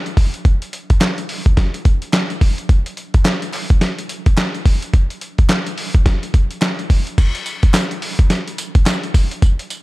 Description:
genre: R&B.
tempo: 107 BPM.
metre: 4/4.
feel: swing 60% on 16ths.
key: none.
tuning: none.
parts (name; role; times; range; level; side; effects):
boom bap sampler-style drum kit; drums; 0.1-9.8 s; crash cymbal, handclaps, hi-hat, kick drum, snare drum, tambourine; -14 LUFS; equal; none.
group handclap; percussion; 1.0-9.0 s; none; -32 LUFS; right 1 dB; none.
room: little or no reverb.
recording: dark, warm production.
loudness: -14 LUFS.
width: side -20 dB against mid.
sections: 0.0-7.2 A section; 7.2-9.8 B section.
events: none.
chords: none.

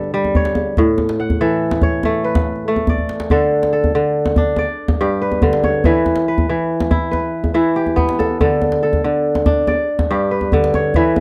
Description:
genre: west african traditional, West African string and xylophone music.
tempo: 94 BPM (dotted quarters).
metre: 12/8.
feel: straight.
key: G lydian.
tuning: A4 = 440 Hz.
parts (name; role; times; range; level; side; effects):
kora; arpeggios; 0.0-11.2 s; G2 to F#5; -18 LUFS; equal; none.
djembe; percussion; 0.0-11.2 s; none; -21 LUFS; equal; none.
room: light reverb.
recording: dry, close 1970s-style studio recording.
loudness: -17 LUFS.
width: mono.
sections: 0.0-3.3 A section; 3.3-11.2 B section.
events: drum fill 3.0-3.3.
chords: 0.0 G; 0.8 A; 3.3 D5; 4.6 G; 5.9 Em; 8.4 D5; 9.7 G.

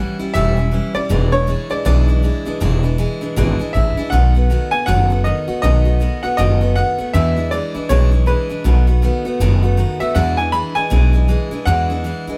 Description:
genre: rockabilly.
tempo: 159 BPM.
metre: 4/4.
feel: swing 61% on 8ths.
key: E mixolydian.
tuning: A4 = 436 Hz.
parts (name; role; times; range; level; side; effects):
bright upright piano; melody; 0.0-12.2 s; B4 to B5; -24 LUFS; equal; none.
picked steel-string acoustic guitar; accompaniment; 0.0-12.4 s; E2 to F#4; -24 LUFS; equal; none.
upright bass; bass; 0.2-12.3 s; E1 to E2; -18 LUFS; equal; none.
room: moderate stone room reverb, RT60 1.1 s.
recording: band playing live in one room.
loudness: -17 LUFS.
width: mono.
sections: 0.0-10.2 A section; 10.2-12.4 A section.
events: none.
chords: 0.0 A7; 1.1 E7; 4.1 B7; 7.1 E7; 8.6 B7; 10.2 E7.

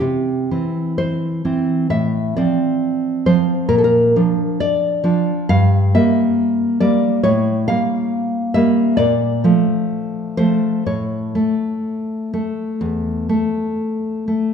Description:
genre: romantic piece for solo classical guitar.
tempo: 66 BPM.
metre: 4/4.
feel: uneven beats, rubato.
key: unclear.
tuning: A4 = 440 Hz.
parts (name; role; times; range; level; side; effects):
nylon-string guitar; solo; 0.0-14.5 s; E2 to F5; -15 LUFS; equal; none.
room: moderate recital hall reverb, RT60 1.6 s.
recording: minimal, uncompressed stereo recording.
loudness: -15 LUFS.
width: side -7 dB against mid.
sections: 0.0-14.5 A section.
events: none.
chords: 0.0 C; 1.9 F/A; 3.7 Bb; 5.5 Edim/G; 7.3 A7b9b13; 9.0 Bbmaj7; 10.9 A.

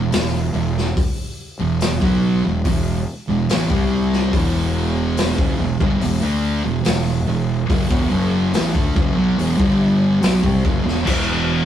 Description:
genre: stoner and doom metal.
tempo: 71 BPM.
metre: 4/4.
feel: straight.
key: E minor.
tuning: A4 = 440 Hz.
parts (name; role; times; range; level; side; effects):
thick fuzz guitar; riff; 0.0-11.7 s; E2 to D4; -21 LUFS; left 2 dB; distortion.
thick fuzz guitar; riff; 0.0-11.7 s; E2 to D4; -22 LUFS; right 5 dB; distortion.
fuzz fingered electric bass; bass; 0.0-11.7 s; E1 to D2; -23 LUFS; equal; overdrive.
raw garage drum kit; drums; 0.1-11.3 s; crash cymbal, hi-hat, kick drum, snare drum; -21 LUFS; left 1 dB; none.
scooped high-gain guitar; riff; 11.1-11.7 s; E2 to E3; -21 LUFS; left 1 dB; distortion.
room: moderate stone room reverb, RT60 1.2 s.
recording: rough rehearsal-room recording, warm saturation.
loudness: -16 LUFS.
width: side -10 dB against mid.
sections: 0.0-11.7 A section.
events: none.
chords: 0.0 Em.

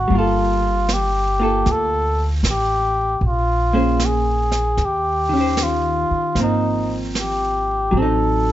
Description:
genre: jazz ballad.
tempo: 77 BPM.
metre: 4/4.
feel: swing 68% on 8ths.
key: unclear.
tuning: A4 = 439 Hz.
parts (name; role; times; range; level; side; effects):
trumpet with cup mute; melody; 0.0-8.5 s; Eb4 to A4; -20 LUFS; equal; plate reverb.
vintage hollow-body jazz guitar; accompaniment; 0.0-8.5 s; Eb3 to C5; -22 LUFS; equal; none.
upright bass; bass; 0.0-8.5 s; G1 to Eb2; -22 LUFS; equal; none.
jazz brush drum kit; drums; 0.1-8.5 s; brushed snare drum, hi-hat, snare drum; -28 LUFS; right 3 dB; none.
room: light reverb.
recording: nothing above 7.8 kHz.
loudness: -17 LUFS.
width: side -13 dB against mid.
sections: 0.0-8.5 A section.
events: none.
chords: 0.1 Gm9; 3.2 Bbm9; 4.8 Eb13; 6.4 Ab69; 7.9 Adim7.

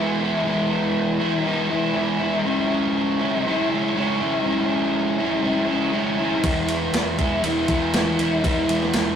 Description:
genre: rock, shoegaze and dream pop.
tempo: 120 BPM.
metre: 4/4.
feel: straight.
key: E major.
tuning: A4 = 440 Hz.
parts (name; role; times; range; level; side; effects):
overdriven electric guitar; riff; 0.0-9.2 s; C#3 to E4; -20 LUFS; equal; none.
picked electric bass; bass; 6.4-9.2 s; E1; -31 LUFS; equal; none.
crisp 8-bit digital drum machine; drums; 6.4-9.1 s; kick drum, ride cymbal, snare drum; -24 LUFS; equal; none.
room: wet studio reverb, RT60 0.6 s.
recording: rough rehearsal-room recording, tube saturation.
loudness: -19 LUFS.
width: side -8 dB against mid.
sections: 0.0-9.2 A section.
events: none.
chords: 0.0 E; 2.4 C#m; 6.4 E.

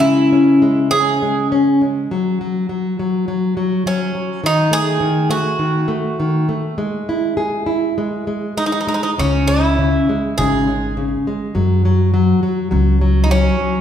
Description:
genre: fado-style ballad.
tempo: 102 BPM.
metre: 4/4.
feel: rubato.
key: C# minor.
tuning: A4 = 440 Hz.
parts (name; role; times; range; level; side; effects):
Greek bouzouki; melody; 0.0-13.8 s; C#4 to G#4; -19 LUFS; right 2 dB; none.
nylon-string guitar; accompaniment; 0.0-13.8 s; C#3 to G#4; -17 LUFS; left 2 dB; none.
upright bass; bass; 9.2-13.5 s; G#1 to F#2; -17 LUFS; equal; none.
room: wet recital hall reverb, RT60 1.7 s.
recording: recorded in a church or concert hall.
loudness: -14 LUFS.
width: side -9 dB against mid.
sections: 0.0-13.8 A section.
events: none.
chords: 0.0 C#m; 2.1 N.C.; 4.4 D#dim; 6.8 E/G#; 8.0 N.C.; 9.2 C#m; 11.5 F#5.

